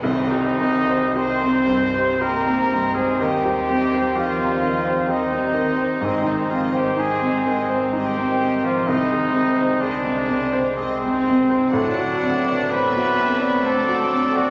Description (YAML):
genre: classical, romantic movement for piano and orchestra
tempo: 50-66 BPM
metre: 3/4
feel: rubato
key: C minor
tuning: A4 = 437 Hz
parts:
  - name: rich chamber violin section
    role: melody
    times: 0.0-14.5 s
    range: C5 to F#5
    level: -37 LUFS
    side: equal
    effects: none
  - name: warm baby grand piano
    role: melody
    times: 0.0-14.5 s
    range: C2 to D5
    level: -24 LUFS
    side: equal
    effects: none
  - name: mellow hollow large flute ensemble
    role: second line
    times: 0.0-14.5 s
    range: C5 to C6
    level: -32 LUFS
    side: equal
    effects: none
  - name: rich chamber violin section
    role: second line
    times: 0.0-14.5 s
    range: A3 to Eb4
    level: -38 LUFS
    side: equal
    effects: none
  - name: warm oboe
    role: second line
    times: 0.0-14.5 s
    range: C5 to D5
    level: -33 LUFS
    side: equal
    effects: none
  - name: dark bassoon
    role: accompaniment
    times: 0.0-14.5 s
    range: Eb3 to Ab3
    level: -37 LUFS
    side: equal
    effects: none
  - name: rich studio viola section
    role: accompaniment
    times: 0.0-14.5 s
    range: D3 to A3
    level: -37 LUFS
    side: equal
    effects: none
  - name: mellow French horn section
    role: sustained chords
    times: 0.0-12.1 s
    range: none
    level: barely audible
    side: none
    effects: none
  - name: warm trombone section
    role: sustained chords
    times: 0.0-12.1 s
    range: C3 to Ab3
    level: -39 LUFS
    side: equal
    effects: none
  - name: warm trumpet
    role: stabs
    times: 0.0-14.5 s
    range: C4 to C5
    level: -27 LUFS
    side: equal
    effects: none
  - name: clear chamber double bass section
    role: bass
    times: 0.0-14.5 s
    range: F#1 to Eb2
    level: -41 LUFS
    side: equal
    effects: none
  - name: warm symphonic cello section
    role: bass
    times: 0.0-14.5 s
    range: C3 to C4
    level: -35 LUFS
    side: equal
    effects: none
  - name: tam-tam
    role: percussion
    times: 0.0-4.1 s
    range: none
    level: -38 LUFS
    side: equal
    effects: none
  - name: warm clarinet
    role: second line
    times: 0.1-14.5 s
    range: C4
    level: -35 LUFS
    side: equal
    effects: none
  - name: timpani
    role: percussion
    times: 0.1-1.7 s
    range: C3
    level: -38 LUFS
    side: equal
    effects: none
room: wet scoring stage reverb, RT60 1.7 s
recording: none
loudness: -20 LUFS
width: mono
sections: 0.0-14.5 A section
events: band accent 0.0-1.2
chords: 0.0 Cm; 3.2 Cm/Eb; 6.0 Ab; 8.9 Ab/C; 11.7 D7/A